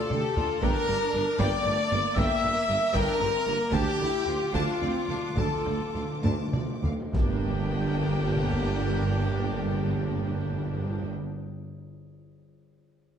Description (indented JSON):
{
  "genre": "cinematic, epic orchestral film score",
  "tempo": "65-78 BPM (dotted quarters)",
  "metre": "6/8",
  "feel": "straight",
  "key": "G dorian",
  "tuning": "A4 = 441 Hz",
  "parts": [
    { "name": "warm symphonic violin section", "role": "melody", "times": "0.0-11.1 s", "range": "F4 to G5", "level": "-37 LUFS", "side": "left 5 dB", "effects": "none" },
    { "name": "hollow small flute group", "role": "second line", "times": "0.0-11.1 s", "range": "Bb4 to E6", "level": "-38 LUFS", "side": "left 6 dB", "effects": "none" },
    { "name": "warm symphonic violin section", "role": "second line", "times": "0.0-11.1 s", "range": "D4 to D6", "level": "-40 LUFS", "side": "left 2 dB", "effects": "none" },
    { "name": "warm symphonic viola section", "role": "accompaniment", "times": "0.0-11.1 s", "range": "A3 to G4", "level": "-35 LUFS", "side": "right 1 dB", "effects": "none" },
    { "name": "mellow French horn section", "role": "sustained chords", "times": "0.0-11.1 s", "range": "F4 to E5", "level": "-31 LUFS", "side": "left 2 dB", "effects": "none" },
    { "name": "clear trumpet section", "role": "stabs", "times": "0.0-11.1 s", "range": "F4 to E5", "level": "-34 LUFS", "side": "right 1 dB", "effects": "none" },
    { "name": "rich symphonic double bass section", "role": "bass", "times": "0.1-11.1 s", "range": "G1 to D2", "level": "-34 LUFS", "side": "right 4 dB", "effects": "none" },
    { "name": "warm symphonic cello section", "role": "bass", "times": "0.1-11.1 s", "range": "D2 to G2", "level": "-35 LUFS", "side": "right 3 dB", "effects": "none" },
    { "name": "warm tuba", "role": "bass", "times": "0.1-11.1 s", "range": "G1 to D2", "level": "-35 LUFS", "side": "right 3 dB", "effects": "none" },
    { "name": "taiko ensemble", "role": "drums", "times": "0.1-8.7 s", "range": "none", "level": "-31 LUFS", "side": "equal", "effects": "none" },
    { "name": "timpani", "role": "percussion", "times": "0.6-1.4, 3.7-11.1 s", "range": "G2 to D3", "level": "-34 LUFS", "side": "left 1 dB", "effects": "none" },
    { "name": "impact", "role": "sound effects", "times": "7.1-9.0 s", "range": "none", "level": "-38 LUFS", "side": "equal", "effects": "none" }
  ],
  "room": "wet scoring stage reverb, RT60 1.5 s",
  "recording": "none",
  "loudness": "-24 LUFS",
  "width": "side -8 dB against mid",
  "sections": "0.0-7.1 A section; 7.1-10.8 B section",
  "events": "drum fill 0.0-0.6, 6.2-7.1; slowing down 2.9-7.1; timpani fill 3.7-7.1; impact 7.1-9.0",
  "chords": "0.0 Dm; 0.6 Gm; 3.7 Dm; 7.1 Gm"
}